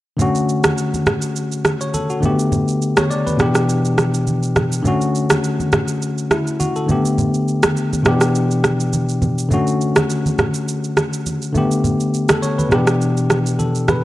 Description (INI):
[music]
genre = afrobeats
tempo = 103 BPM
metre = 4/4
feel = swing 55% on 16ths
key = unclear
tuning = A4 = 440 Hz
[part]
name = bell-like tine electric piano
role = accompaniment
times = 0.2-14.0 s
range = B2 to D5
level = -17 LUFS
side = left 1 dB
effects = none
[part]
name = electronic shaker and rim click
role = drums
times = 0.2-14.0 s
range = none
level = -19 LUFS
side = right 1 dB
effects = none
[part]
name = congas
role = percussion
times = 0.2-14.0 s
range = none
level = -23 LUFS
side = right 1 dB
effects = none
[sound]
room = light reverb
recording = dry, gritty hardware recording, transformer saturation, cassette tape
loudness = -15 LUFS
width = side -16 dB against mid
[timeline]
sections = 0.2-14.0 A section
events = none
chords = 0.2 Dmaj7; 2.2 A9sus4; 3.4 G6/B; 4.9 Dmaj7; 6.9 A9sus4; 8.1 G6/B; 9.5 Dmaj7; 11.6 A9sus4; 12.7 G6/B